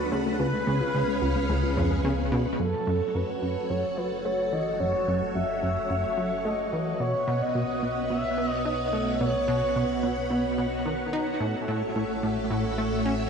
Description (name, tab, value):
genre	ambient, sequencer-driven space music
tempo	109 BPM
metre	4/4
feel	straight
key	F# dorian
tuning	A4 = 440 Hz
part	expressive synth lead	melody	0.0-10.3 s	A4 to E5	-30 LUFS	equal	chorus, tape echo
part	string machine, full ensemble	sustained chords	0.0-13.3 s	A3 to F#5	-30 LUFS	right 1 dB	ensemble chorus
part	soft round pluck	arpeggios	0.0-2.5 s	G#3 to C#5	-33 LUFS	left 2 dB	chorus, auto-pan, tape echo
part	analog drone	bass	0.0-13.3 s	F#1 to D2	-36 LUFS	equal	chorus
part	plucky analog bass	riff	0.1-13.1 s	C#2 to D#4	-28 LUFS	equal	lush chorus, tape echo
part	bubbling stepped-filter texture	texture	2.9-13.3 s	F#4 to F#5	-38 LUFS	right 2 dB	chorus, built-in reverb
room	wet echo chamber reverb, RT60 2.0 s, digital ambience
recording	echo-heavy mix, nothing above 10.8 kHz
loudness	-24 LUFS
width	side -6 dB against mid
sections	0.0-2.6 A section; 2.6-13.3 B section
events	filter sweep on analog synth bass 0.0-2.6; fade-in on synth drone 2.6-13.3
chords	0.4 C#7; 2.6 F#m; 7.0 Bsus2; 11.4 A